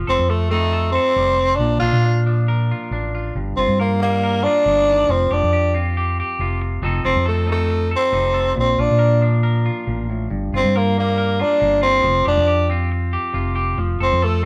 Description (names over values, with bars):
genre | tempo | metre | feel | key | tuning
highlife guitar band | 138 BPM | 4/4 | straight | unclear | A4 = 440 Hz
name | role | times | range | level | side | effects
clean electric guitar | accompaniment | 0.0-14.5 s | G2 to Bb4 | -27 LUFS | equal | none
hollow-body short-scale fingered electric bass | bass | 0.0-14.5 s | F1 to Bb2 | -22 LUFS | equal | none
raspy tenor saxophone | melody | 0.1-14.4 s | A3 to F4 | -20 LUFS | equal | none
room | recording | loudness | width
moderate stone room reverb, RT60 1.2 s | band playing live in one room | -18 LUFS | mono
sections
0.0-10.3 A section; 10.3-14.5 A section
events
none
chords
0.0 F7; 1.6 Bb; 3.3 Gm7; 5.1 Fsus2; 6.8 F7; 8.6 Bb; 10.3 Gm7; 12.0 Fsus2; 13.8 F